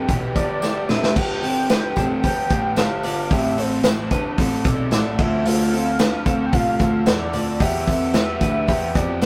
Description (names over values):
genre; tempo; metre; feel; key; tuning
jangly indie pop; 112 BPM; 4/4; straight; unclear; A4 = 440 Hz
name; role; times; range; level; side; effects
warm velvety synth lead; melody; 0.0-9.3 s; C5 to G5; -28 LUFS; equal; chorus
crunchy overdriven guitar; accompaniment; 0.0-9.3 s; G2 to A4; -32 LUFS; equal; none
twelve-string electric guitar; arpeggios; 0.0-9.3 s; A3 to E5; -28 LUFS; equal; spring reverb
clear concert grand piano; bass; 0.0-9.3 s; F1 to F2; -27 LUFS; equal; none
vintage drum kit; drums; 0.1-9.3 s; crash cymbal, hi-hat, kick drum, snare drum; -24 LUFS; equal; none
tambourine; percussion; 0.1-9.3 s; none; -45 LUFS; equal; none
room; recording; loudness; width
moderate stone room reverb, RT60 1.1 s; rough rehearsal-room recording; -20 LUFS; mono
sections
0.0-1.2 A section; 1.2-9.3 B section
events
drum fill 0.6-1.2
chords
0.0 Em; 3.3 Am; 5.2 Dm7; 7.6 G7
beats
0.09 0.62 | 1.16 1.70 2.23 2.77 | 3.31 3.85 4.38 4.92 | 5.46 6.00 6.53 7.07 | 7.61 8.14 8.68 9.22